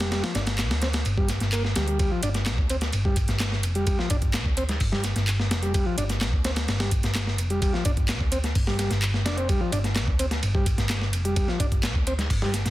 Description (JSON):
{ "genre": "breakbeat, breaks", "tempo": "128 BPM", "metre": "4/4", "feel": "straight", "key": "unclear", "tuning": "A4 = 442 Hz", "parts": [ { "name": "combo organ", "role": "riff", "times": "0.0-12.5 s", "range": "F3 to D4", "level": "-30 LUFS", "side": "equal", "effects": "overdrive, low-pass filter, dub echo" }, { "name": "hollow-body short-scale picked electric bass", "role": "bass", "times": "0.0-12.7 s", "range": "F1 to D2", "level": "-26 LUFS", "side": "equal", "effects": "none" }, { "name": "breakbeat sampler-style drum kit", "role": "drums", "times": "0.0-12.7 s", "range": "hi-hat, kick drum, ride cymbal, snare drum", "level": "-26 LUFS", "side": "equal", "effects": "none" }, { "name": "garage drum kit", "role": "drums", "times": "0.0-12.7 s", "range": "handclaps, hi-hat", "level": "-33 LUFS", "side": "right 1 dB", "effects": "overdrive" } ], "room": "little or no reverb", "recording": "dense, heavily limited modern master", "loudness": "-22 LUFS", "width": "side -16 dB against mid", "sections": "0.0-12.7 A section", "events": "none", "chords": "0.0 G7(no3)", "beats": "| 0.12 0.59 1.06 1.52 | 1.99 2.46 2.93 3.40 | 3.87 4.34 4.81 5.28 | 5.74 6.21 6.68 7.15 | 7.62 8.09 8.56 9.03 | 9.49 9.96 10.43 10.90 | 11.37 11.84 12.31" }